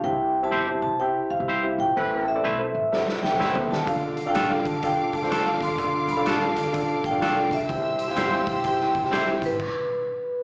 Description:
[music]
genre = uptempo 1960s-style soul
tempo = 126 BPM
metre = 4/4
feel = swing 63% on 8ths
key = C major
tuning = A4 = 439 Hz
[part]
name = vibraphone with medium hard mallets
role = melody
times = 0.0-10.4 s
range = B4 to C6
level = -28 LUFS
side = equal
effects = none
[part]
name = warm upright piano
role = accompaniment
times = 0.0-9.5 s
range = A2 to G5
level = -30 LUFS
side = equal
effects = slapback echo
[part]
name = upright bass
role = bass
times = 0.0-9.6 s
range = E1 to D3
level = -39 LUFS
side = equal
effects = none
[part]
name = semi-hollow electric guitar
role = stabs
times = 0.5-9.3 s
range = A3 to C5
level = -30 LUFS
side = equal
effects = slapback echo
[part]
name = warm horn section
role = second line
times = 2.0-2.3 s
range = E3 to B4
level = -32 LUFS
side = equal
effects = slapback echo
[part]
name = raw garage drum kit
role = drums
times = 2.9-9.7 s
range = crash cymbal, hi-hat, kick drum, snare drum, toms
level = -32 LUFS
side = equal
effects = none
[part]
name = warm studio string section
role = second line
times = 3.9-9.6 s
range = G4 to E6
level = -34 LUFS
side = equal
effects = slapback echo
[sound]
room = light reverb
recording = live gig heard through the venue's PA, club reverb, small speaker sound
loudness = -24 LUFS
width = mono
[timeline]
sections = 0.0-10.4 A section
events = band accent 2.0-3.9; drum fill 2.9-3.9; stop 9.6-10.4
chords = 0.0 C; 2.0 Amadd9; 3.9 Dm; 7.7 C; 9.6 N.C.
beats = | 0.04 0.52 1.00 1.48 | 1.96 2.44 2.92 3.40 | 3.87 4.35 4.83 5.31 | 5.78 6.26 6.74 7.21 | 7.69 8.17 8.64 9.12 | 9.60 10.07

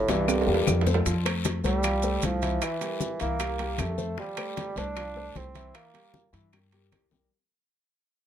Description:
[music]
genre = Afro-Cuban jazz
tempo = 154 BPM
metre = 4/4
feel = straight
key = F major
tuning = A4 = 440 Hz
[part]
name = warm bassoon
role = melody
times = 0.0-6.3 s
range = G2 to D4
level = -31 LUFS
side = right 4 dB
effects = none
[part]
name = warm concert grand piano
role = accompaniment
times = 0.0-7.3 s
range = E3 to F5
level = -32 LUFS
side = left 5 dB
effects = none
[part]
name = upright bass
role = bass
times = 0.0-7.3 s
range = C2 to G2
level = -29 LUFS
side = equal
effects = none
[part]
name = bongos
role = percussion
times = 0.1-7.2 s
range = none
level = -38 LUFS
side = left 8 dB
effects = none
[part]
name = guiro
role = percussion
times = 0.1-7.3 s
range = none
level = -42 LUFS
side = left 8 dB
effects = none
[part]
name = maracas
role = percussion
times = 0.1-4.2 s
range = none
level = -38 LUFS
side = right 8 dB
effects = none
[part]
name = timbales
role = percussion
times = 0.1-7.1 s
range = none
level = -33 LUFS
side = right 7 dB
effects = none
[part]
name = claves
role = percussion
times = 0.3-7.1 s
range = none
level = -37 LUFS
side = left 5 dB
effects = none
[part]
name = congas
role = percussion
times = 0.3-7.3 s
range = none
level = -35 LUFS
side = left 3 dB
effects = none
[sound]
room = light reverb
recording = none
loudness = -25 LUFS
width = side -10 dB against mid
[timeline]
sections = 0.0-1.1 A section; 1.1-7.3 B section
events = drum fill 0.0-1.1, 6.5-7.3; fade-out 1.1-7.3; bassoon solo 1.1-7.3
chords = 0.3 C6; 1.1 Fmaj7; 2.6 C7; 4.2 Fmaj7; 5.7 C7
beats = 0.28 0.67 | 1.06 1.45 1.84 2.23 | 2.62 3.01 3.40 3.79 | 4.18 4.57 4.96 5.35 | 5.74 6.13 6.53 6.92

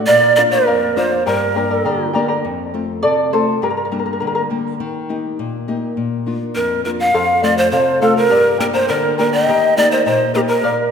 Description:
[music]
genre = andean folk, Andean ensemble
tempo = 102 BPM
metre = 2/4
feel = straight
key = unclear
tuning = A4 = 445 Hz
[part]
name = charango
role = accompaniment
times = 0.0-4.4, 7.1-10.9 s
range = G4 to Bb5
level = -20 LUFS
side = left 1 dB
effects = none
[part]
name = nylon-string guitar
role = accompaniment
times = 0.0-10.9 s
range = F2 to G4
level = -21 LUFS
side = left 3 dB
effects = none
[part]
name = breathy large pan pipes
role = melody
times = 0.1-2.1, 6.6-10.7 s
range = G4 to F5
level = -15 LUFS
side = equal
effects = none
[part]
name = large quena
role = second line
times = 0.1-2.1, 6.6-10.9 s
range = A4 to G5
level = -20 LUFS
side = right 5 dB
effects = none
[sound]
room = wet concert hall reverb, RT60 2.4 s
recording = minimal, uncompressed stereo recording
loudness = -14 LUFS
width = side -6 dB against mid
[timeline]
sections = 0.0-2.4 A section; 2.4-7.1 B section; 7.1-10.9 C section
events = charango solo 2.4-7.1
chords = 0.1 Bb; 1.3 Gm; 2.4 F; 3.6 Gm; 4.8 Eb; 6.0 Bb; 7.1 F; 8.3 Gm; 9.5 Eb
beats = | 0.08 0.67 | 1.26 1.85 | 2.44 3.03 | 3.62 4.21 | 4.79 5.38 | 5.97 6.56 | 7.14 7.73 | 8.31 8.89 | 9.48 10.06 | 10.64

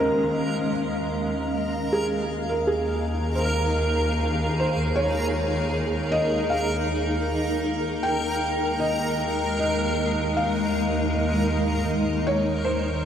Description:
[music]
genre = ambient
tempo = 78 BPM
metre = 4/4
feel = straight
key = unclear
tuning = A4 = 440 Hz
[part]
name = felt-muted upright piano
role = melody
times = 0.0-13.1 s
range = Ab4 to G5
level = -27 LUFS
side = equal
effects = tape echo
[part]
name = granular cloud pad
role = sustained chords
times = 0.0-13.1 s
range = Ab3 to F5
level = -27 LUFS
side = equal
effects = built-in reverb
[part]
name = rich studio double bass section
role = bass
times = 0.0-13.1 s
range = Eb2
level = -28 LUFS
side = equal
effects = none
[part]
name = analog drone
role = drone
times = 0.9-13.1 s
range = Eb3 to Bb3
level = -36 LUFS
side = equal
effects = none
[part]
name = backwards swelling texture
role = texture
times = 0.0-13.1 s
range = Bb4 to Bb5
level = -30 LUFS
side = right 1 dB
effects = built-in reverb
[sound]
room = wet huge ambient reverb, RT60 7.4 s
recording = none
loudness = -22 LUFS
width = side -8 dB against mid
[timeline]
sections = 0.0-13.1 A section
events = none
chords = 0.0 Db6/Eb; 8.1 Ebsus4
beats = 0.37 1.14 | 1.91 2.68 3.45 4.22 | 4.99 5.76 6.53 7.29 | 8.06 8.83 9.60 10.37 | 11.14 11.91 12.68

